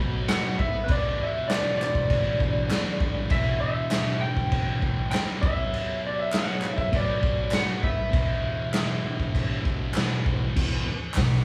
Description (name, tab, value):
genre	garage rock duo or trio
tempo	99 BPM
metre	4/4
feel	straight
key	E minor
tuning	A4 = 440 Hz
part	electric slide guitar	melody	0.0-9.9 s	B4 to B5	-32 LUFS	equal	none
part	thick fuzz guitar	riff	0.0-11.4 s	E2 to B3	-31 LUFS	equal	distortion
part	raw garage drum kit	drums	0.3-11.3 s	crash cymbal, hi-hat, kick drum, snare drum	-29 LUFS	equal	none
part	group handclap	percussion	0.3-11.3 s	none	-38 LUFS	equal	none
room	moderate large studio reverb, RT60 1.1 s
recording	band playing live in one room, small room ambience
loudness	-26 LUFS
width	mono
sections	0.0-10.6 A section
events	none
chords	0.0 B5; 0.9 Em; 5.4 Bm; 8.1 E5